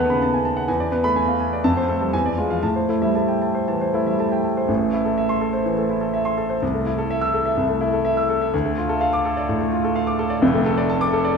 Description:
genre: classical, virtuoso piano study.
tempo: 115-130 BPM.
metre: 4/4.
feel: rubato.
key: A minor.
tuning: A4 = 442 Hz.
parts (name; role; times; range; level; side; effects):
clear grand piano; solo; 0.0-11.4 s; F1 to E6; -18 LUFS; equal; none.
room: wet recital hall reverb, RT60 1.6 s.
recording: heard from further back in the room.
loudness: -18 LUFS.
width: side -5 dB against mid.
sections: 0.0-4.7 A section; 4.7-11.4 B section.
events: none.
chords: 0.0 B7/D#; 0.7 E7; 1.6 F; 2.1 E7b9; 2.6 Am; 6.6 Am/C; 8.5 Dm; 10.4 Dm/F.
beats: 0.21 | 0.68 1.16 1.65 2.13 | 2.64 3.16 3.68 4.19 | 4.69 5.17 5.66 6.13 | 6.62 7.10 7.57 8.05 | 8.53 9.01 9.49 9.95 | 10.42 10.89 11.37.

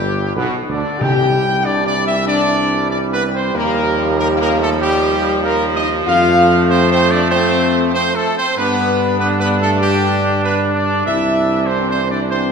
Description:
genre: classical, ceremonial fanfare.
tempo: 96 BPM.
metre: 4/4.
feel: straight.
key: C major.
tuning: A4 = 441 Hz.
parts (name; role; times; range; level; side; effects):
mellow trumpet section; melody; 0.0-12.5 s; G4 to G5; -18 LUFS; right 1 dB; none.
bright trombone section; sustained chords; 0.0-12.5 s; G2 to D4; -20 LUFS; right 3 dB; none.
mellow French horn section; sustained chords; 0.0-12.5 s; G3 to G4; -20 LUFS; left 4 dB; none.
mellow tuba; bass; 0.0-12.5 s; G1 to G2; -19 LUFS; right 1 dB; none.
timpani; percussion; 1.0-1.9 s; C3; -21 LUFS; equal; none.
room: wet scoring stage reverb, RT60 1.9 s.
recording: minimal, uncompressed stereo recording.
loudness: -13 LUFS.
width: side -6 dB against mid.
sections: 0.0-12.5 A section.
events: none.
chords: 0.0 G; 1.0 Cadd9; 3.5 Ebadd9; 6.1 F; 8.6 G; 11.1 Cadd9.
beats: 0.36 | 1.02 1.65 2.28 2.91 | 3.55 4.18 4.81 5.43 | 6.07 6.70 7.32 7.95 | 8.58 9.20 9.81 10.44 | 11.06 11.69 12.32.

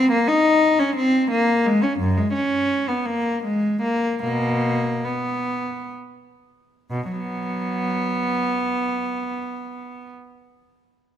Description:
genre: classical, baroque-style suite movement for unaccompanied cello.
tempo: 61-90 BPM.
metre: 3/4.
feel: rubato.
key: B major.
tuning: A4 = 440 Hz.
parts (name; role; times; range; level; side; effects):
rich cello; solo; 0.0-10.1 s; F#2 to D#4; -20 LUFS; equal; none.
room: light reverb.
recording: close, detailed microphones.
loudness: -19 LUFS.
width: side -10 dB against mid.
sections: 0.0-6.9 A section; 6.9-11.2 B section.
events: slowing down 1.0-6.9.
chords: none.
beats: 0.62 1.30 | 2.00 2.71 3.44 | 4.23 5.06 5.94 | 6.89 7.85 8.80 | 9.73.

